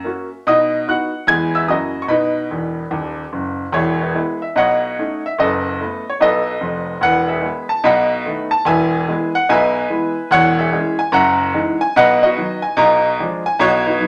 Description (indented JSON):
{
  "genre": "jazz, stride piano",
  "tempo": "146 BPM",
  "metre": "4/4",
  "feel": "swing 64% on 8ths",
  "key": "B major, E major from 3.7 s, B major from 10.3 s",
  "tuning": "A4 = 439 Hz",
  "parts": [
    { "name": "clear baby grand piano", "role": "solo", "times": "0.0-14.1 s", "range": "D#1 to G#6", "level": "-17 LUFS", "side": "equal", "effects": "none" }
  ],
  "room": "wet studio reverb, RT60 0.8 s",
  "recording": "none",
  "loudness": "-17 LUFS",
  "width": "mono",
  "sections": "0.0-3.7 A section; 3.7-14.1 B section",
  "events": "grand piano fill 2.5-3.7",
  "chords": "0.5 B; 1.3 E; 1.7 F#7; 2.1 B; 3.7 E; 4.6 B9; 5.4 B7/F#; 7.0 E; 7.8 B7; 8.7 E; 10.3 C#m/E; 11.1 F#13; 12.0 B; 12.8 Bdim7"
}